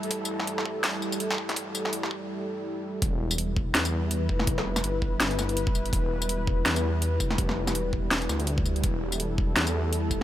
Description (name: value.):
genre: half-time drum and bass.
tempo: 165 BPM.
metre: 4/4.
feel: swing 58% on 16ths, half-time.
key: E phrygian.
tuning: A4 = 436 Hz.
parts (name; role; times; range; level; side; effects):
dark analog pad; sustained chords; 0.0-10.2 s; G3 to B4; -31 LUFS; equal; chorus, sidechain pumping.
dark detuned saw bass; bass; 0.0-10.2 s; E1 to E2; -30 LUFS; equal; high-pass filter.
drum and bass drum kit; drums; 0.0-10.2 s; hi-hat, snare drum, tambourine; -29 LUFS; equal; overdrive, high-pass filter on snare, high-pass filter on hats, high-pass filter on perc, high-pass filter on room.
electronic kick drum; drums; 0.1-10.2 s; none; -28 LUFS; equal; overdrive, high-pass filter on kick, high-pass filter on room.
room: light reverb.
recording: none.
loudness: -25 LUFS.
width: side -12 dB against mid.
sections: 0.0-3.0 A section; 3.0-10.2 B section.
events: build-up 0.0-3.0; break 2.3-3.0; drop 3.0-10.2.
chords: 0.0 Em.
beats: | 0.11 0.48 0.84 1.20 | 1.57 1.93 2.29 2.66 | 3.02 3.38 3.75 4.11 | 4.48 4.84 5.20 5.57 | 5.93 6.29 6.66 7.02 | 7.38 7.75 8.11 8.48 | 8.84 9.20 9.57 9.93.